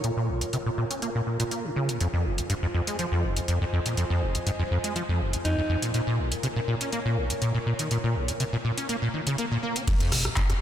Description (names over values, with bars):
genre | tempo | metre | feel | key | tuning
acid house | 122 BPM | 4/4 | straight | unclear | A4 = 441 Hz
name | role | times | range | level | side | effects
acid bass, saw | riff | 0.0-10.5 s | F1 to Db4 | -26 LUFS | equal | ensemble chorus, sidechain pumping, tape echo
booming analog drum machine | drums | 0.0-10.6 s | crash cymbal, handclaps, hi-hat, rim click, tambourine, toms | -32 LUFS | equal | none
airy breathy pad | texture | 0.0-9.9 s | F4 to Ab5 | -35 LUFS | equal | chorus, sidechain pumping
growling alto saxophone | melody | 5.4-5.8 s | Eb4 | -33 LUFS | equal | tape echo
big rock drum kit | drums | 9.9-10.5 s | ride cymbal, snare drum | -40 LUFS | left 3 dB | sidechain pumping on cymbals, high-pass filter on cymbals, high-pass filter on snare, high-pass filter on room
electronic kick drum | drums | 9.9-10.5 s | none | -25 LUFS | equal | none
room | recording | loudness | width
moderate lush hall reverb, RT60 1.9 s, small room ambience | dreamy mix soaked in reverb | -24 LUFS | side -10 dB against mid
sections
0.0-9.9 A section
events
filter sweep on acid bass 0.0-9.9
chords
0.0 Bbm7; 2.0 Fm7; 5.9 Bbm7; 9.9 N.C.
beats
| 0.04 0.53 1.02 1.51 | 2.01 2.50 2.99 3.48 | 3.97 4.46 4.96 5.45 | 5.94 6.43 6.92 7.42 | 7.91 8.40 8.89 9.38 | 9.88 10.37